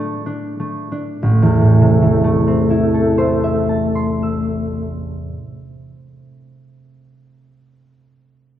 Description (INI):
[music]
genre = classical, romantic duo for alto saxophone and harp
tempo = 33 BPM (dotted quarters)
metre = 6/8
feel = rubato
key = A minor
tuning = A4 = 441 Hz
[part]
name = concert harp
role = accompaniment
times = 0.0-6.3 s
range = A1 to E6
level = -16 LUFS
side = right 2 dB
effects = none
[part]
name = warm alto saxophone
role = melody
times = 1.2-5.1 s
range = A3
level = -20 LUFS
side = left 3 dB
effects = none
[sound]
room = wet scoring stage reverb, RT60 1.8 s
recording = dark, warm production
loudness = -14 LUFS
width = side -11 dB against mid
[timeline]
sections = 0.0-1.2 A section; 1.2-4.9 B section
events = slowing down 0.0-1.2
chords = 0.0 D5/A; 1.2 Am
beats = | 1.24 3.07